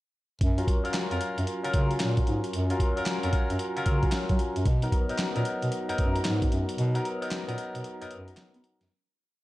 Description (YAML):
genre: R&B, new jack swing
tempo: 113 BPM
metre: 4/4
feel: swing 64% on 16ths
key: F# major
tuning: A4 = 443 Hz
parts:
  - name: dark bass clarinet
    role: bass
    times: 0.4-8.9 s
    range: E#2 to B3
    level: -29 LUFS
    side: equal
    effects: none
  - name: boom bap sampler-style drum kit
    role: drums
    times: 0.4-8.9 s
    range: handclaps, hi-hat, kick drum, snare drum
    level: -28 LUFS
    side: equal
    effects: vintage 12-bit sampler grit
  - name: barky tine electric piano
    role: accompaniment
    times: 0.6-8.9 s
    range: F#3 to A#4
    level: -30 LUFS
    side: left 1 dB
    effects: tube saturation, phaser
room: digital ambience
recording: none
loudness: -25 LUFS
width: side -17 dB against mid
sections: 0.4-8.9 verse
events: break 6.8-8.9; fade-out 6.8-8.9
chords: 0.4 F#maj7; 4.7 Bmaj7